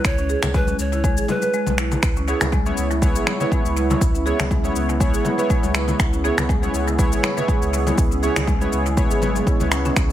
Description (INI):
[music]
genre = afro house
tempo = 121 BPM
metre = 4/4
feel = swing 54% on 16ths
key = C# minor pentatonic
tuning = A4 = 440 Hz
[part]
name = breathy bright large pan pipes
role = melody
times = 0.0-1.8 s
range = B4 to C#5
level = -28 LUFS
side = equal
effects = dub echo
[part]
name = marimba with medium mallets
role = arpeggios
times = 0.0-9.9 s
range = G#3 to B4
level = -25 LUFS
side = equal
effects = sidechain pumping, dub echo
[part]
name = warm sub bass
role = bass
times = 0.0-10.1 s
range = G#1 to C#2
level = -24 LUFS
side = equal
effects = sidechain pumping
[part]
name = electronic finger snaps and cabasa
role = drums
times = 0.0-10.1 s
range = none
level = -26 LUFS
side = left 1 dB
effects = analog delay
[part]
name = electronic kick drum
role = drums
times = 0.0-10.1 s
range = none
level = -20 LUFS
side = equal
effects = none
[part]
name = congas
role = percussion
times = 0.4-9.9 s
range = none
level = -29 LUFS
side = left 3 dB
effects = analog delay
[part]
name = warm analog pad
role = sustained chords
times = 2.4-10.1 s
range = C#3 to G#4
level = -28 LUFS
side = right 2 dB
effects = chorus, sidechain pumping
[part]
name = warm analog keys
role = stabs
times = 2.3-10.1 s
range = B3 to C#5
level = -26 LUFS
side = equal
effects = chorus, sidechain pumping, analog delay
[sound]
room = light reverb, studio reverb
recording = echo-heavy mix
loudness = -17 LUFS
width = side -12 dB against mid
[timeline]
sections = 0.0-10.1 A section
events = kick drops out 1.5-2.0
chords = 0.0 C#m7